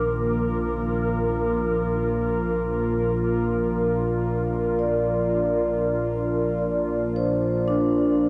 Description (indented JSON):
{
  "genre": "ambient",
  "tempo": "free time",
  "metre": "none",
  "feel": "none",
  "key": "unclear",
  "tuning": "A4 = 440 Hz",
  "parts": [
    { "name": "warbly tape-like pad", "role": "sustained chords", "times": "0.0-8.3 s", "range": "Bb2 to Bb4", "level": "-25 LUFS", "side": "equal", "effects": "chorus, built-in reverb" },
    { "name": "vibraphone with medium mallets", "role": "arpeggios", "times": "0.0-8.3 s", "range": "D4 to F6", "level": "-29 LUFS", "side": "equal", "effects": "diffuse ambient delay" },
    { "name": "warm sub bass", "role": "bass", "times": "0.0-8.3 s", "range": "Bb1", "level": "-38 LUFS", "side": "equal", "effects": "none" }
  ],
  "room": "wet huge ambient reverb, RT60 8.4 s",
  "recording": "dreamy mix soaked in reverb",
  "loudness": "-24 LUFS",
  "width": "mono",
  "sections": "0.0-8.3 A section",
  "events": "none",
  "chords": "0.0 Ebsus2/Bb"
}